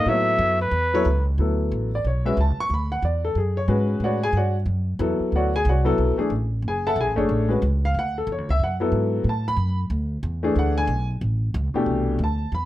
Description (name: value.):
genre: modal jazz.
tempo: 183 BPM.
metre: 4/4.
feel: swing 61% on 8ths.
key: D lydian.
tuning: A4 = 440 Hz.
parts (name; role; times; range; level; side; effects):
breathy trumpet; melody; 0.0-1.3 s; B4 to E5; -21 LUFS; equal; none.
warm upright piano; accompaniment; 0.0-12.7 s; B2 to C#6; -23 LUFS; left 2 dB; none.
upright bass; bass; 0.0-12.7 s; F#1 to A2; -23 LUFS; equal; none.
room: light reverb.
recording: none.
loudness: -20 LUFS.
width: side -14 dB against mid.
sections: 0.0-1.4 A section; 1.4-11.9 A section.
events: trumpet solo 0.0-1.4.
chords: 0.1 Aadd9; 1.4 Dmaj9; 11.9 Cmaj9.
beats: | 0.07 0.40 0.73 1.05 | 1.38 1.71 2.04 2.37 | 2.70 3.03 3.36 3.69 | 4.01 4.34 4.67 5.00 | 5.33 5.65 5.98 6.31 | 6.64 6.96 7.29 7.62 | 7.95 8.27 8.60 8.93 | 9.26 9.58 9.91 10.23 | 10.56 10.89 11.21 11.54 | 11.87 12.19 12.52.